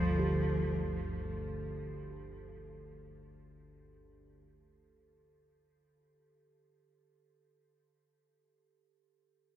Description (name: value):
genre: dark ambient drone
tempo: free time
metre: none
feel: none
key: unclear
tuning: A4 = 440 Hz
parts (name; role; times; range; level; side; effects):
- dark cello; melody; 0.0-3.0 s; F3; -37 LUFS; equal; diffuse ambient delay
- dark analog pad; sustained chords; 0.0-4.3 s; none; barely audible; none; none
- bronze singing bowl; arpeggios; 0.0-7.9 s; D3 to A4; -40 LUFS; right 2 dB; diffuse ambient delay
- analog drone; drone; 0.0-4.4 s; G1 to D2; -38 LUFS; equal; chorus
room: light reverb, small room ambience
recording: none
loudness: -33 LUFS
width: side -12 dB against mid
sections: 0.0-4.3 A section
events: fade-out 0.0-4.3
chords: 0.0 Dm/G